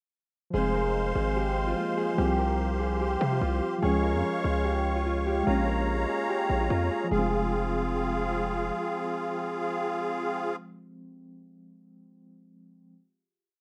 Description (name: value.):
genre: hip hop, drill.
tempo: 146 BPM.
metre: 4/4.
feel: half-time.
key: F minor.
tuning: A4 = 438 Hz.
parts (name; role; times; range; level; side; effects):
Celtic harp; melody; 0.5-9.4 s; F4 to Bb4; -33 LUFS; equal; low-pass filter.
muted felt-like synth keys; accompaniment; 0.5-12.9 s; F3 to Db4; -37 LUFS; equal; chorus, tremolo, low-pass filter.
musette accordion; sustained chords; 0.5-10.6 s; Ab3 to Db6; -33 LUFS; equal; none.
distorted 808-style bass; bass; 0.5-8.7 s; F1 to C3; -32 LUFS; equal; distortion.
room: light reverb.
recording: rough home demo mix.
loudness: -28 LUFS.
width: mono.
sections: 0.5-7.1 breakdown; 7.1-10.4 final chord.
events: none.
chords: 0.5 Fm; 2.2 Csus4; 3.8 Db; 5.5 Bbm7; 7.1 Fm.